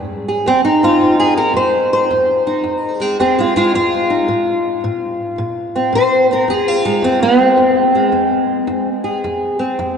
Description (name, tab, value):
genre	acoustic country blues, solo or duo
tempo	109 BPM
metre	4/4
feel	swing 66% on 8ths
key	F minor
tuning	A4 = 435 Hz
part	fingerpicked steel-string acoustic guitar	solo	0.0-10.0 s	F2 to C5	-13 LUFS	equal	analog chorus
room	wet cathedral reverb, RT60 4.9 s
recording	dreamy mix soaked in reverb, nothing above 10.5 kHz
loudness	-13 LUFS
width	side -6 dB against mid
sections	0.0-10.0 A section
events	none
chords	0.0 Fm7; 4.3 Bbsus2; 6.5 Fm